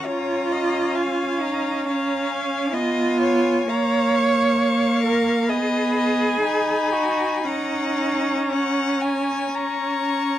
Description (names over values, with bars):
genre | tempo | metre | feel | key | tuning
classical, slow romantic movement for string quartet | 55-70 BPM | 4/4 | rubato | F# major from 3.7 s | A4 = 440 Hz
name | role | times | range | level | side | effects
rich violin | melody | 0.0-10.4 s | Ab5 to C#6 | -30 LUFS | left 8 dB | none
rich violin | second line | 0.0-10.4 s | Db5 to A#5 | -27 LUFS | left 4 dB | none
clear cello | bass | 0.0-10.4 s | Db4 to C#5 | -24 LUFS | right 3 dB | none
rich viola | accompaniment | 0.1-10.4 s | A#3 to D#4 | -23 LUFS | right 1 dB | none
room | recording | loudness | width
moderate studio reverb, RT60 0.6 s | none | -19 LUFS | side -12 dB against mid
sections
0.0-10.4 A section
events
none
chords
0.1 Bbm/Db; 3.7 A#m; 5.5 B; 7.5 F#/C#; 9.6 C#5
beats
| 0.06 0.96 1.86 2.74 | 3.69 4.60 5.49 6.43 | 7.46 8.51 9.56